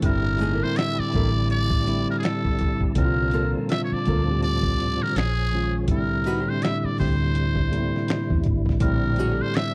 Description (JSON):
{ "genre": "R&B, neo-soul", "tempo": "82 BPM", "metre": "4/4", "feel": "swing 61% on 16ths", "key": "G dorian", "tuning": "A4 = 440 Hz", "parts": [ { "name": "trumpet with metal mute", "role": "melody", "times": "0.0-9.7 s", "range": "Ab4 to E5", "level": "-31 LUFS", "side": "equal", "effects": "slapback echo" }, { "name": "mellow tine electric piano", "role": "accompaniment", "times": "0.0-9.7 s", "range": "A2 to G4", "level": "-28 LUFS", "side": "equal", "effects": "none" }, { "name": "percussive tonewheel organ", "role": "sustained chords", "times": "0.0-9.7 s", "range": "C3 to A5", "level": "-37 LUFS", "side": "equal", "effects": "slow rotary speaker, overdrive, chorus vibrato" }, { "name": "vintage muted fingered electric bass", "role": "bass", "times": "0.0-9.4 s", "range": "G1 to E2", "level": "-28 LUFS", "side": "equal", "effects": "none" }, { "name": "dusty soul sampler-style drum kit", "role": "drums", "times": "0.0-9.7 s", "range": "finger snaps, hi-hat, kick drum, snare drum", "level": "-28 LUFS", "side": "equal", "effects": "none" }, { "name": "nylon-string guitar", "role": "second line", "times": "0.4-9.5 s", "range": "Bb3 to D5", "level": "-32 LUFS", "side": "equal", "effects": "none" } ], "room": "digital ambience", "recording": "dry, close 1970s-style studio recording", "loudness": "-23 LUFS", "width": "mono", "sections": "0.0-9.7 A section", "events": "none", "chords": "0.0 Gm69; 3.0 C13sus4; 5.2 Bbm7; 5.9 Am7/C; 8.8 Bbmaj13" }